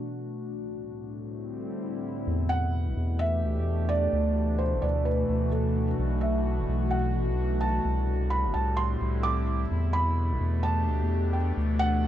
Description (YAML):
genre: IDM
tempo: 129 BPM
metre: 4/4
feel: swing 62% on 16ths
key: E minor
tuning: A4 = 440 Hz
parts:
  - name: warbly tape-like pad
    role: sustained chords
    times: 0.0-12.1 s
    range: C2 to G4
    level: -30 LUFS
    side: left 1 dB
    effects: chorus, built-in reverb
  - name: round analog bass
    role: bass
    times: 2.3-12.1 s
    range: F#1 to E2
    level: -27 LUFS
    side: equal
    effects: tube saturation
  - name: felt-muted upright piano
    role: melody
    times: 2.5-12.1 s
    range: A4 to D6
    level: -31 LUFS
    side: right 2 dB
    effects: ping-pong delay
room: small room ambience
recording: rough home demo mix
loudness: -25 LUFS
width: side -11 dB against mid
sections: 0.0-2.3 A section; 2.3-12.1 B section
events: filter sweep on ambient pad 0.0-2.3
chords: 0.4 Am/C; 2.3 Em; 4.1 Dadd9; 6.0 Bm; 7.9 Am; 9.7 Em; 11.6 Dadd9